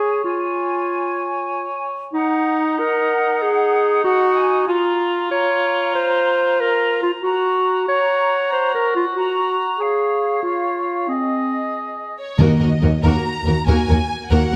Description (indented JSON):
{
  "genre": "cinematic",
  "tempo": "94 BPM (dotted quarters)",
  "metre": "12/8",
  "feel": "straight",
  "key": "Eb dorian",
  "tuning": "A4 = 441 Hz",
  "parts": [
    { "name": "bright small flute group", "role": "second line", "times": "0.0-12.2 s", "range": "Eb5 to Bb5", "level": "-28 LUFS", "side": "equal", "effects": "none" },
    { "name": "clear clarinet", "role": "second line", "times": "0.0-11.7 s", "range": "C4 to Db5", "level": "-21 LUFS", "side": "equal", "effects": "none" },
    { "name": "mellow cor anglais", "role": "second line", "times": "0.0-12.2 s", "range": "Eb4 to Db5", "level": "-26 LUFS", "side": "equal", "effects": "none" },
    { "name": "warm symphonic violin section", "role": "melody", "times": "12.2-14.6 s", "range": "Db5 to Bb5", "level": "-28 LUFS", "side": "equal", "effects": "none" },
    { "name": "warm symphonic violin section", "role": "second line", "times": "12.4-14.6 s", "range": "Bb4", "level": "-30 LUFS", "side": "equal", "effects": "none" },
    { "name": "rich symphonic viola section", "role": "accompaniment", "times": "12.4-14.6 s", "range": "Bb3 to Gb4", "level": "-24 LUFS", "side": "equal", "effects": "none" },
    { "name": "rich symphonic cello section", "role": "bass", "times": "12.4-14.6 s", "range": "Eb2", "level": "-22 LUFS", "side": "equal", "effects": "none" },
    { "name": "rich symphonic double bass section", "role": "bass", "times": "12.4-14.6 s", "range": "Eb2", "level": "-24 LUFS", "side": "equal", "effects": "none" },
    { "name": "timpani", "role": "percussion", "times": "12.4-13.0 s", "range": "Eb3", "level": "-21 LUFS", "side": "equal", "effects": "none" }
  ],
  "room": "moderate scoring stage reverb, RT60 1.9 s",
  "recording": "none",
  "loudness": "-19 LUFS",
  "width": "mono",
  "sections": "0.0-12.4 A section; 12.4-14.6 A section",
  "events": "none",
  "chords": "0.0 Db; 2.1 Ebm; 4.7 Bbm/F; 7.2 Gb; 9.8 Db/Ab; 11.1 Ab/C; 12.4 Ebm"
}